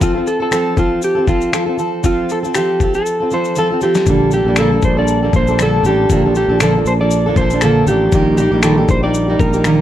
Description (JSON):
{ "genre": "acoustic pop", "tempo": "118 BPM", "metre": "4/4", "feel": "swing 55% on 16ths", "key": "unclear", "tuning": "A4 = 436 Hz", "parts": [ { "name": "electric slide guitar", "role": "melody", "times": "0.0-9.8 s", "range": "F4 to D5", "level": "-17 LUFS", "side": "left 1 dB", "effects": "none" }, { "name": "fingerpicked plugged-in steel-string acoustic guitar", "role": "accompaniment", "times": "0.0-9.8 s", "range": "Bb2 to A4", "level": "-16 LUFS", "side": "right 2 dB", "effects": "none" }, { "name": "dusty soul sampler-style drum kit", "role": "drums", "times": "0.0-9.8 s", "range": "finger snaps, kick drum, shaker, snare drum", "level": "-18 LUFS", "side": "left 2 dB", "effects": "overdrive" }, { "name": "sustaining fretless electric bass", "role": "bass", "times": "4.1-9.8 s", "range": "A1 to Bb1", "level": "-17 LUFS", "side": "equal", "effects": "none" } ], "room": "light reverb", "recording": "dark, warm production", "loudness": "-12 LUFS", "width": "side -11 dB against mid", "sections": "0.0-4.1 A section; 4.1-9.8 B section", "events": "drum fill 3.1-4.1", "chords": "0.0 F; 4.1 Gmadd9/Bb; 6.1 Dm/Bb; 8.1 Eb/Bb" }